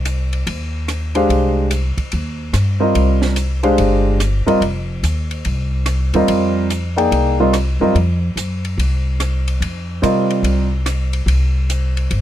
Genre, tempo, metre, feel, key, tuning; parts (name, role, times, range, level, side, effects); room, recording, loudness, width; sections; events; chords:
modal jazz; 144 BPM; 4/4; swing 66% on 8ths; A4 = 440 Hz
upright bass; bass; 0.0-12.2 s; F1 to C3; -18 LUFS; equal
compact cocktail drum kit; drums; 0.1-12.2 s; hi-hat, kick drum, ride cymbal, rim click, snare drum; -27 LUFS; equal
warm concert grand piano; accompaniment; 1.1-10.7 s; G3 to G5; -15 LUFS; right 1 dB
little or no reverb; -15 LUFS; side -12 dB against mid
0.0-12.2 A section
0.0 Cm11; 4.6 F9sus4; 11.3 N.C.